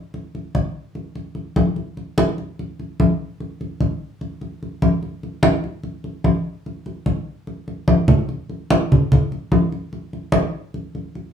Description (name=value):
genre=latin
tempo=147 BPM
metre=4/4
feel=straight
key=none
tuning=none
part: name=congas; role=percussion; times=0.1-11.3 s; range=none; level=-18 LUFS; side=equal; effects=none
room=wet studio ambience, RT60 0.5 s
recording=band playing live in one room, studio ambience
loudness=-18 LUFS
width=side -8 dB against mid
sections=0.0-8.3 A section; 8.3-11.3 B section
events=drum fill 7.9-8.3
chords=none